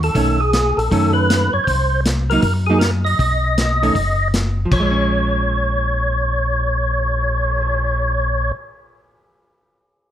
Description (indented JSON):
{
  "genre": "soul jazz organ trio",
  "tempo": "158 BPM",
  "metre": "4/4",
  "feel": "swing 66% on 8ths",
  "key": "unclear",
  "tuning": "A4 = 442 Hz",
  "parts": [
    { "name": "percussive tonewheel organ", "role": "melody", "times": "0.0-8.5 s", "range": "Ab4 to Eb5", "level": "-19 LUFS", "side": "equal", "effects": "slow rotary speaker, overdrive, chorus vibrato" },
    { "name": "mellow tonewheel organ", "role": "bass", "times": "0.0-8.5 s", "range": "F#1 to F#2", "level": "-20 LUFS", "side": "equal", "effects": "slow rotary speaker" },
    { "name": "vintage drum kit", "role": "drums", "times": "0.0-7.7 s", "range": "crash cymbal, cymbal swell, hi-hat, kick drum, snare drum", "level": "-22 LUFS", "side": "left 1 dB", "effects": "none" },
    { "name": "vintage hollow-body jazz guitar", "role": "accompaniment", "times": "0.2-8.8 s", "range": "D#3 to Eb4", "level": "-21 LUFS", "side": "right 3 dB", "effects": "none" }
  ],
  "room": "light reverb",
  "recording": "none",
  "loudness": "-15 LUFS",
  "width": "side -10 dB against mid",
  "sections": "0.0-4.7 A section; 4.7-7.8 B section",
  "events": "none",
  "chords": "0.1 B9; 1.7 Cm7b5; 3.2 B; 4.7 Bbm7"
}